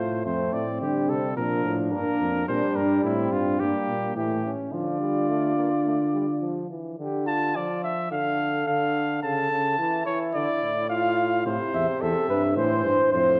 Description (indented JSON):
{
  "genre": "classical, imitative canzona for brass ensemble",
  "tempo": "108 BPM",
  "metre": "4/4",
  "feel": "straight",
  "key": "D minor",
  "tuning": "A4 = 442 Hz",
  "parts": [
    { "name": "warm trumpet", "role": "melody", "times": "0.0-13.4 s", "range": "E4 to A5", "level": "-30 LUFS", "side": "equal", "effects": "none" },
    { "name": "mellow flugelhorn", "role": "second line", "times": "0.0-13.4 s", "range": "A3 to E5", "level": "-30 LUFS", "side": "equal", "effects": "none" },
    { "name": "clear trombone", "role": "accompaniment", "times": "0.0-13.4 s", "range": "A2 to Bb3", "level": "-32 LUFS", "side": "equal", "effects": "none" },
    { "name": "mellow bass trombone", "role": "bass", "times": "0.0-6.7, 11.5-13.4 s", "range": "E2 to D3", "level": "-30 LUFS", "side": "equal", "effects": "none" }
  ],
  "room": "wet recital hall reverb, RT60 1.5 s",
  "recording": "dark, warm production",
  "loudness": "-25 LUFS",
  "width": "mono",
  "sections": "0.0-7.0 A section; 7.0-13.4 B section",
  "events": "none",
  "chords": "0.3 F; 1.4 Bb; 2.5 Gm; 4.2 A; 4.7 Dm; 9.2 A/C#; 10.3 Dm; 11.5 Am"
}